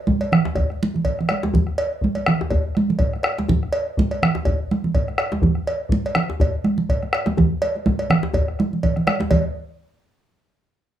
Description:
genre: west african traditional, West African drum ensemble.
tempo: 123 BPM.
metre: 4/4.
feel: swing 56% on 16ths.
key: none.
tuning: none.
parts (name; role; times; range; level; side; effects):
bombo; percussion; 0.1-9.5 s; none; -22 LUFS; left 1 dB; none.
congas; percussion; 0.1-9.5 s; none; -20 LUFS; right 3 dB; none.
cowbell; percussion; 0.2-9.5 s; none; -26 LUFS; right 1 dB; none.
djembe; percussion; 0.3-9.5 s; none; -26 LUFS; left 3 dB; none.
room: wet small room reverb, RT60 0.5 s.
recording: rough home demo mix, studio reverb.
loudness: -18 LUFS.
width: side -11 dB against mid.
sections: 0.0-9.3 A section; 9.3-11.0 B section.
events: drum fill 1.2-1.5, 8.7-9.3.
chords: none.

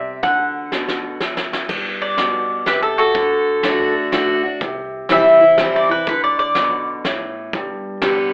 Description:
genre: honky-tonk and classic country.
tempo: 123 BPM.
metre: 3/4.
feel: swing 62% on 8ths.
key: G major.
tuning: A4 = 439 Hz.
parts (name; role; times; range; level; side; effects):
lap resonator guitar; second line; 0.0-1.5 s; E5 to F#5; -20 LUFS; equal; none.
picked steel-string acoustic guitar; accompaniment; 0.0-8.3 s; G2 to G4; -21 LUFS; equal; none.
upright bass; bass; 0.0-8.3 s; G1 to E2; -36 LUFS; equal; none.
soft brush drum kit; drums; 0.2-8.2 s; crash cymbal, hi-hat, kick drum, snare drum; -23 LUFS; equal; none.
mandolin; melody; 2.0-6.9 s; F#4 to E5; -14 LUFS; equal; none.
room: light reverb.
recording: telephone sound.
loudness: -15 LUFS.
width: side -33 dB against mid.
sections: 0.0-1.7 A section; 1.7-8.3 B section.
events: resonator guitar played with a steel bar solo 0.0-1.7; drum fill 0.7-1.7; mandolin solo 1.7-8.3.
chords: 0.2 D; 1.7 G; 3.2 D; 4.6 C; 6.1 D5; 7.5 G.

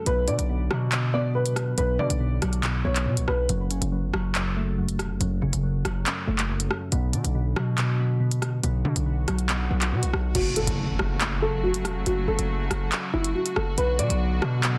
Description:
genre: hip hop, drill.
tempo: 140 BPM.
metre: 4/4.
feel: half-time.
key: F# minor.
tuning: A4 = 439 Hz.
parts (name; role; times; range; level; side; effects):
glassy digital keys; accompaniment; 0.0-10.4 s; F#2 to B3; -31 LUFS; equal; chorus, phaser.
dark baby grand piano; melody; 0.1-3.4, 10.3-14.6 s; E4 to D5; -30 LUFS; equal; none.
distorted 808-style bass; bass; 0.1-14.8 s; E1 to B2; -28 LUFS; equal; distortion.
drill drum kit; drums; 0.1-14.7 s; crash cymbal, handclaps, hi-hat, rim click; -31 LUFS; equal; none.
swell and impact; sound effects; 9.2-12.1 s; none; -36 LUFS; equal; none.
warm studio string section; sustained chords; 10.4-14.8 s; C#3 to F#4; -35 LUFS; equal; none.
room: light reverb, digital ambience.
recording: dense, heavily limited modern master.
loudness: -25 LUFS.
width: mono.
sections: 0.0-10.3 A section; 10.3-14.8 B section.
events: swell 9.2-10.3; impact 10.3-12.1.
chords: 0.1 Bm; 3.5 F#m; 6.9 Bm; 10.3 F#m; 13.8 Bm.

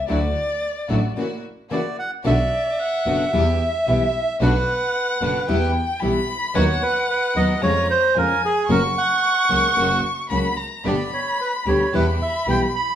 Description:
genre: tango.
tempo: 112 BPM.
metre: 4/4.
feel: rubato.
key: B harmonic minor.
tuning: A4 = 440 Hz.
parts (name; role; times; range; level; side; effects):
dark violin; second line; 0.0-13.0 s; D5 to C#6; -25 LUFS; left 2 dB; none.
warm double bass; bass; 0.0-12.7 s; F#1 to E#2; -24 LUFS; right 1 dB; none.
nylon-string guitar; accompaniment; 0.1-12.6 s; B2 to B4; -23 LUFS; left 2 dB; none.
clear symphonic string section; stabs; 0.1-12.7 s; G#3 to G4; -31 LUFS; right 2 dB; none.
bandoneon; melody; 1.7-13.0 s; G#4 to B5; -21 LUFS; right 2 dB; none.
room: wet large studio reverb, RT60 0.9 s.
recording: band playing live in one room.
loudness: -18 LUFS.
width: side -10 dB against mid.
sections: 0.0-2.2 A section; 2.2-13.0 B section.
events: violin solo 0.0-2.2; break 1.2-2.2.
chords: 0.1 Dadd9; 1.2 F#7; 2.2 Bm; 3.3 Em; 4.4 Bm; 5.5 Em; 6.6 B/D#; 7.6 C#/E#; 8.7 F#; 10.8 G; 11.9 Em.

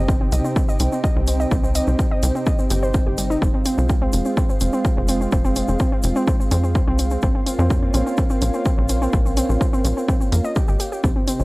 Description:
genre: melodic techno.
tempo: 126 BPM.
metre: 4/4.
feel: straight.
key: unclear.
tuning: A4 = 439 Hz.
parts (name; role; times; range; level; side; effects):
lush unison pad; sustained chords; 0.0-11.4 s; C3 to G4; -27 LUFS; equal; chorus, sidechain pumping.
warbly dusty pluck; arpeggios; 0.0-11.4 s; G3 to Eb5; -24 LUFS; right 1 dB; chorus, sidechain pumping, tape echo.
tight sequencer bass; bass; 0.0-11.4 s; F1 to F2; -21 LUFS; equal; sidechain pumping.
electronic kick drum; drums; 0.1-11.1 s; none; -20 LUFS; equal; none.
egg shaker; percussion; 0.1-11.4 s; none; -36 LUFS; left 2 dB; none.
electronic hi-hat; drums; 0.3-11.4 s; none; -29 LUFS; right 1 dB; none.
room: little or no reverb.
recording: dry, gritty hardware recording, cassette tape.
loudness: -17 LUFS.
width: side -22 dB against mid.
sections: 0.0-11.4 A section.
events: none.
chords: 0.0 Cm; 3.4 Fm; 7.2 Bbm.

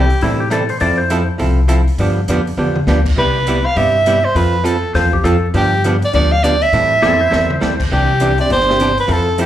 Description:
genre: country, western swing.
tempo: 203 BPM.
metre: 4/4.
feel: swing 62% on 8ths.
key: C major.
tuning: A4 = 440 Hz.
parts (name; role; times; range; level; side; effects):
breathy soprano saxophone; melody; 0.0-0.2, 3.2-9.5 s; G4 to F5; -15 LUFS; right 1 dB; plate reverb, slapback echo.
archtop guitar, miked and amplified; accompaniment; 0.0-9.5 s; C3 to A4; -18 LUFS; right 2 dB; plate reverb, slapback echo.
upright bass; bass; 0.0-9.5 s; G1 to A2; -17 LUFS; left 1 dB; none.
swinging big-band drum kit; drums; 0.1-9.5 s; crash cymbal, hi-hat, kick drum, snare drum, toms; -26 LUFS; equal; none.
clean lap steel guitar; second line; 0.2-1.3, 5.0-7.8 s; C4 to D5; -19 LUFS; left 4 dB; plate reverb, slapback echo.
warm upright piano; accompaniment; 8.4-8.8 s; C4 to G4; -23 LUFS; left 2 dB; plate reverb, slapback echo.
room: moderate club reverb, RT60 0.6 s.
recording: live gig heard through the venue's PA, club reverb.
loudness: -12 LUFS.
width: side -12 dB against mid.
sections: 0.0-9.5 A section.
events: drum fill 2.6, 7.0-7.6.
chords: 0.0 Am7/C; 0.8 Fmaj7; 2.0 G7; 3.2 Cmaj7; 4.4 F; 5.5 G7; 6.7 Am7; 7.9 Cadd9.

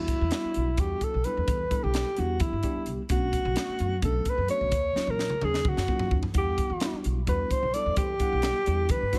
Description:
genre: electric jazz fusion.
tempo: 259 BPM (eighths).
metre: 7/8.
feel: straight.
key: E minor.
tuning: A4 = 440 Hz.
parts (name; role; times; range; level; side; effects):
dark alto saxophone; melody; 0.0-9.2 s; E4 to D5; -31 LUFS; equal; none.
mellow tine electric piano; accompaniment; 0.0-9.2 s; F#3 to F#5; -37 LUFS; equal; phaser, plate reverb.
upright bass; bass; 0.0-9.1 s; A#1 to E3; -33 LUFS; equal; none.
crisp fusion drum kit; drums; 0.1-9.2 s; hi-hat, kick drum, snare drum, toms; -33 LUFS; equal; none.
room: light reverb.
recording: none.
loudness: -27 LUFS.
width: mono.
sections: 0.0-9.2 A section.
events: drum fill 5.0-6.4.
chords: 0.0 Em9; 3.1 Bm9; 4.7 D#m9; 6.4 Em9.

